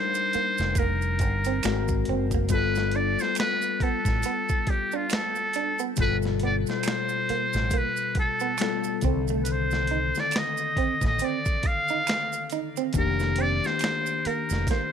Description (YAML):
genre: R&B, neo-soul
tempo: 69 BPM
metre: 4/4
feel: swing 58% on 16ths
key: unclear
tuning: A4 = 440 Hz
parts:
  - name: trumpet with metal mute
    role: melody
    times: 0.0-14.9 s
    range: F4 to F5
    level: -27 LUFS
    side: right 1 dB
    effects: none
  - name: mellow tine electric piano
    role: accompaniment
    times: 0.0-14.9 s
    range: B2 to Bb4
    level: -30 LUFS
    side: left 12 dB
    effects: none
  - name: maracas and finger snaps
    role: percussion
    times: 0.1-14.9 s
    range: none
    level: -37 LUFS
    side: right 18 dB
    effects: none
  - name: electric guitar through a small old amp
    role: second line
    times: 0.3-14.9 s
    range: A3 to Eb4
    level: -32 LUFS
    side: right 16 dB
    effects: none
  - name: mellow fretless electric bass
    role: bass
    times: 0.3-14.7 s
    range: F1 to C2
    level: -28 LUFS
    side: right 1 dB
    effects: none
  - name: dusty soul sampler-style drum kit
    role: drums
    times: 0.3-14.9 s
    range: finger snaps, hi-hat, kick drum, snare drum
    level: -29 LUFS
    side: right 1 dB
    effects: none
room: digital ambience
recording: 1960s-style stereo with parts hard left and right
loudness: -23 LUFS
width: side -8 dB against mid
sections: 0.0-14.9 A section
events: drum fill 14.7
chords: 0.0 F13sus4; 1.6 Ab9; 2.5 G9; 9.0 Cm69; 12.9 F13sus4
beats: 0.76 1.63 | 2.50 3.37 4.24 5.11 | 5.98 6.85 7.72 8.59 | 9.46 10.32 11.20 12.06 | 12.93 13.80 14.67